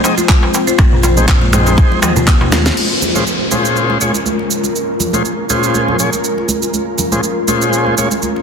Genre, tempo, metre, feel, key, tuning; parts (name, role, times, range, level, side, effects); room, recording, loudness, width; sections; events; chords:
afro house; 121 BPM; 4/4; swing 55% on 16ths; Bb minor; A4 = 440 Hz
ethereal airy pad; sustained chords; 0.0-8.4 s; Ab3 to C5; -19 LUFS; left 1 dB; ensemble chorus, built-in reverb, tremolo, sidechain pumping
buzzing kalimba; arpeggios; 0.0-2.6 s; F3 to F4; -21 LUFS; left 4 dB; sidechain pumping, ping-pong delay
tonewheel organ; stabs; 0.0-8.1 s; Bb2 to Eb5; -17 LUFS; left 2 dB; overdrive, slow rotary speaker, sidechain pumping, ping-pong delay
house drum kit; drums; 0.0-8.3 s; crash cymbal, finger snaps, handclaps, shaker, snare drum, toms; -18 LUFS; right 2 dB; soft clipping on snare
darbuka; percussion; 0.0-2.6 s; -21 LUFS; left 1 dB
congas; percussion; 0.2-8.4 s; -22 LUFS; right 4 dB
electronic kick drum; drums; 0.3-2.4 s; -11 LUFS; equal
dark detuned saw bass; bass; 0.8-2.7 s; Bb1 to Eb2; -16 LUFS; equal; sidechain pumping
downlifter; sound effects; 2.8-6.7 s; -22 LUFS; equal
light reverb, digital ambience; dense, heavily limited modern master; -11 LUFS; side -6 dB against mid
0.0-2.8 A section; 2.8-8.4 B section
drum fill 2.0-2.8
0.0 Ab/Bb; 2.8 Bbm7